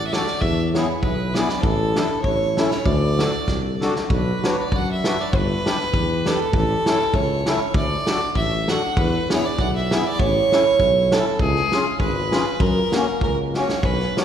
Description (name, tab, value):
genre	alpine folk, alpine dance band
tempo	98 BPM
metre	2/4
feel	swing 54% on 8ths, rubato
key	D major, B minor from 4.1 s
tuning	A4 = 440 Hz
part	clear fiddle	melody	0.0-14.2 s	G#4 to F#5	-22 LUFS	right 2 dB	none
part	mellow tuba	bass	0.0-14.0 s	G1 to F#2	-24 LUFS	left 1 dB	none
part	accordion	accompaniment	0.1-14.2 s	A#3 to B4	-25 LUFS	left 2 dB	light tremolo tuning
part	loose indie drum kit	drums	0.1-14.2 s	kick drum, snare drum	-24 LUFS	equal	none
room	wet concert hall reverb, RT60 2.3 s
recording	recorded in a church or concert hall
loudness	-18 LUFS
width	side -9 dB against mid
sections	0.0-4.1 A section; 4.1-14.2 B section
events	drum fill 3.5-4.1, 13.5-13.8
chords	0.4 E; 1.6 Asus4; 2.3 A; 2.9 D; 4.1 Bm; 5.3 G; 6.5 A; 7.8 D; 9.0 E; 10.2 A; 11.4 C#7; 12.6 F#